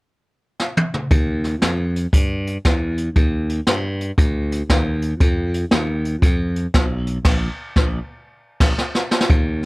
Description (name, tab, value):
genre	uptempo gospel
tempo	117 BPM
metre	4/4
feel	swing 65% on 8ths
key	Eb major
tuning	A4 = 438 Hz
part	jazz brush drum kit	drums	0.6-9.7 s	crash cymbal, hi-hat, kick drum, snare drum, toms	-17 LUFS	equal	none
part	glassy slap bass	bass	1.1-9.7 s	Bb1 to G2	-21 LUFS	equal	none
room	little or no reverb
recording	none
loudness	-17 LUFS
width	side -23 dB against mid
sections	0.0-1.1 A section; 1.1-9.3 B section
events	drum fill 0.6-1.1, 8.3-9.3; band accent 7.2-9.3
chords	none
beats	0.09 0.60 | 1.11 1.62 2.13 2.65 | 3.16 3.67 4.18 4.69 | 5.20 5.71 6.22 6.73 | 7.25 7.76 8.27 8.78 | 9.29